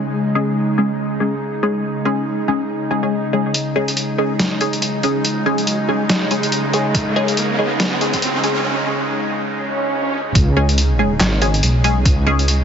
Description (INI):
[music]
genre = deep dubstep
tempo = 141 BPM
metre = 4/4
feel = swing 58% on 16ths, half-time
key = unclear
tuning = A4 = 440 Hz
[part]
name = bowed-like drone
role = sustained chords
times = 0.0-12.6 s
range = C#3 to D#4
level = -21 LUFS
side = equal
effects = built-in reverb
[part]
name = filtered dub chord stab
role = stabs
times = 0.0-12.5 s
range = G#3 to G#4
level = -21 LUFS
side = left 1 dB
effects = phaser, analog chorus, dub echo
[part]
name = trip hop sampler-style drum kit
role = drums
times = 3.5-12.6 s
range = handclaps, hi-hat, snare drum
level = -21 LUFS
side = equal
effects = none
[part]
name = riser and swell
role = sound effects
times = 5.3-10.4 s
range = none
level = -25 LUFS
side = right 2 dB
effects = none
[part]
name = electronic kick drum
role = drums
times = 6.9-12.2 s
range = none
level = -17 LUFS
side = equal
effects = none
[part]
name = dark detuned saw bass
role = bass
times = 10.4-12.6 s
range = G#1 to C#2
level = -16 LUFS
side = equal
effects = none
[sound]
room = moderate huge ambient reverb, RT60 8.0 s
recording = heavily compressed radio sound, multiband compression, high-pass filter, nothing above 7.6 kHz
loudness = -16 LUFS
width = side -7 dB against mid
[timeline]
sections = 0.0-3.5 A section; 3.5-10.4 B section; 10.4-12.6 C section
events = build-up 3.5-10.4; riser 5.3-8.7; break 8.7-10.4; swell 9.5-10.4; drop 10.4-12.6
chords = 0.0 C#5